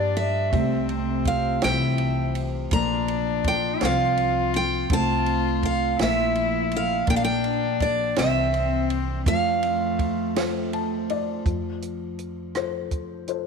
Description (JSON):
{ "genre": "acoustic folk-pop ballad", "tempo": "55 BPM (dotted quarters)", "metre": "6/8", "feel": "straight", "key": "F major", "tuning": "A4 = 440 Hz", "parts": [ { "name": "picked steel-string acoustic guitar", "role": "melody", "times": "0.0-11.1 s", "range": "D5 to Bb5", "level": "-25 LUFS", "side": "right 4 dB", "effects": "none" }, { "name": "warm cello", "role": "second line", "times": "0.0-11.1 s", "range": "A3 to F4", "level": "-30 LUFS", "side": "left 11 dB", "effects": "none" }, { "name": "felt-muted upright piano", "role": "accompaniment", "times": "0.0-13.5 s", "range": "C3 to A5", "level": "-29 LUFS", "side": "left 12 dB", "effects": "none" }, { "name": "Celtic harp", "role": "arpeggios", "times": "0.0-13.5 s", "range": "E3 to G4", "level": "-31 LUFS", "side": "right 13 dB", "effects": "none" }, { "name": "upright bass", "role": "bass", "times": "0.0-13.5 s", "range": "Bb1 to G2", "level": "-29 LUFS", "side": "equal", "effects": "none" }, { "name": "compact cocktail drum kit", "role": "drums", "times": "0.2-13.4 s", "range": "hi-hat, kick drum, ride cymbal, rim click, snare drum", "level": "-29 LUFS", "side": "right 3 dB", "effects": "none" } ], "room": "moderate echo chamber reverb, RT60 1.8 s, small room ambience", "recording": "1960s-style stereo with parts hard left and right", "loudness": "-21 LUFS", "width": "side -5 dB against mid", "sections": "0.0-11.5 A section; 11.5-13.5 B section", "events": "none", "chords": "0.0 Gm; 0.5 F/C; 1.6 C; 2.7 Bb; 3.8 Csus4; 4.9 F/C; 6.0 Bb5; 7.1 Gm/Bb; 8.2 C; 9.3 F", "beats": "| 0.53 1.62 | 2.71 3.81 | 4.90 5.99 | 7.08 8.17 | 9.27 10.36 | 11.46 12.55" }